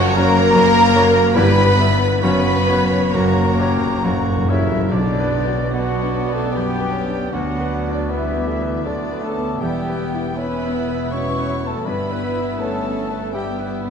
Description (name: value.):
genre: classical, romantic movement for piano and orchestra.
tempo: 66-82 BPM.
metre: 3/4.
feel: rubato.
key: B minor.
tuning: A4 = 440 Hz.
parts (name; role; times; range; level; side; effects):
clear concert grand piano; melody; 0.0-13.9 s; F#1 to E5; -22 LUFS; left 1 dB; none.
rich studio violin section; melody; 0.0-13.7 s; D5 to C#6; -30 LUFS; left 2 dB; none.
clear clarinet; second line; 0.0-13.9 s; B3 to E4; -30 LUFS; left 2 dB; none.
mellow cor anglais; second line; 0.0-13.9 s; F#4 to E5; -31 LUFS; right 3 dB; none.
mellow silver concert flute; second line; 0.0-13.7 s; D5 to C#6; -26 LUFS; equal; none.
rich studio violin section; second line; 0.0-13.9 s; B3 to B4; -29 LUFS; left 2 dB; none.
mellow bassoon; accompaniment; 0.0-13.9 s; F#3 to D4; -31 LUFS; right 2 dB; none.
rich studio viola section; accompaniment; 0.0-13.7 s; F#3 to C#5; -30 LUFS; right 3 dB; none.
mellow French horn section; sustained chords; 0.0-13.7 s; D3 to C#4; -25 LUFS; left 3 dB; none.
warm trumpet section; stabs; 0.0-13.7 s; D4 to C#5; -24 LUFS; equal; none.
dark studio cello section; bass; 0.0-13.9 s; D2 to B3; -30 LUFS; right 2 dB; none.
rich studio double bass section; bass; 0.0-13.9 s; E1 to G2; -26 LUFS; right 4 dB; none.
timpani; percussion; 2.2-6.1 s; F#2 to B2; -26 LUFS; left 2 dB; none.
room: wet scoring stage reverb, RT60 1.9 s.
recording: dark, warm production.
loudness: -16 LUFS.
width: side -7 dB against mid.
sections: 0.0-4.9 A section; 4.9-13.9 B section.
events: timpani fill 2.2-4.9.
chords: 0.0 F#; 1.4 Em/G; 2.2 F#; 4.9 Bm; 7.3 Bm/D; 9.6 Em; 11.8 Em/G.